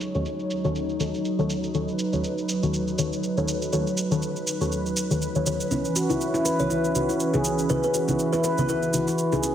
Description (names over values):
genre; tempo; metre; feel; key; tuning
afro house; 121 BPM; 4/4; swing 56% on 16ths; unclear; A4 = 440 Hz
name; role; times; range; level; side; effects
warm analog pad; sustained chords; 0.0-9.5 s; E3 to C#5; -28 LUFS; right 1 dB; wide subtle chorus
shaker; drums; 0.0-9.5 s; none; -32 LUFS; right 2 dB; low-pass filter on hats, low-pass filter on perc, low-pass filter on toms, low-pass filter on snare
deep mellow chord stab; stabs; 0.1-9.5 s; C#3 to C#5; -27 LUFS; left 2 dB; chorus, phaser, dub echo
handpan; arpeggios; 5.7-9.5 s; C#4 to B4; -26 LUFS; equal; vintage 12-bit sampler grit, dub echo
kalimba; melody; 6.6-8.8 s; B4 to C#5; -28 LUFS; left 2 dB; dub echo
room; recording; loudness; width
moderate plate reverb, RT60 1.4 s, digital ambience; heavily compressed radio sound, multiband compression; -22 LUFS; side -10 dB against mid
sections
0.0-9.5 A section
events
none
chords
0.0 D#m7b5; 5.7 C#m7